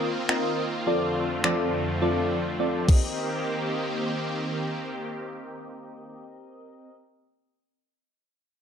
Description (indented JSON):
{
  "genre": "dance-pop",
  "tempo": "104 BPM",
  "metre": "4/4",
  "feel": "straight",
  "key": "C dorian",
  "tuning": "A4 = 440 Hz",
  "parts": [
    { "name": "soft electric-piano-like synth keys", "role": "accompaniment", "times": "0.0-6.9 s", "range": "F3 to Eb5", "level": "-29 LUFS", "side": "equal", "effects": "chorus, phaser, sidechain pumping" },
    { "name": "filtered supersaw swell", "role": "sustained chords", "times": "0.0-6.2 s", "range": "F2 to G4", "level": "-29 LUFS", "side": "equal", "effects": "sidechain pumping" },
    { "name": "pop drum kit", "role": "drums", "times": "0.3-3.0 s", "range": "crash cymbal, finger snaps, kick drum", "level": "-22 LUFS", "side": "equal", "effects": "overdrive" }
  ],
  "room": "moderate plate reverb, RT60 1.5 s",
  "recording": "dark, warm production",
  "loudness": "-24 LUFS",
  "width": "side -8 dB against mid",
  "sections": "0.0-3.2 A section; 3.2-5.5 B section",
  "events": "silent gap 2.6-3.2",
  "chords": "0.0 F7sus4; 0.9 Dm7/F; 2.9 Cm7",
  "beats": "0.29 | 0.87 1.44 2.02 2.60 | 3.17 3.75 4.33 4.90"
}